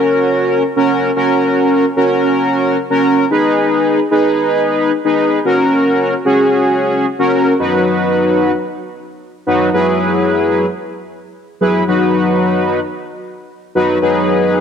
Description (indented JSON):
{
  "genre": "pop",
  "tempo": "112 BPM",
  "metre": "4/4",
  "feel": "straight",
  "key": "unclear",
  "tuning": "A4 = 435 Hz",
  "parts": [
    { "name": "analog synth brass", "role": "solo", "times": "0.0-14.6 s", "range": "F#3 to B4", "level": "-12 LUFS", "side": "equal", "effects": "chorus" }
  ],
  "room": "moderate lush hall reverb, RT60 2.3 s",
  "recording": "none",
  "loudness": "-11 LUFS",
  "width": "side -7 dB against mid",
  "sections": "0.0-7.6 A section; 7.6-14.6 B section",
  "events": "none",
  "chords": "0.0 F#; 3.3 G#m; 5.4 F#; 7.6 B/F#; 9.7 E/F#; 11.9 B/F#; 14.0 G#m7/F#",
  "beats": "0.09 0.63 | 1.16 1.70 2.23 2.77 | 3.31 3.84 4.38 4.91 | 5.45 5.99 6.52 7.06 | 7.59 8.13 8.66 9.20 | 9.73 10.27 10.81 11.34 | 11.88 12.41 12.95 13.48 | 14.02 14.56"
}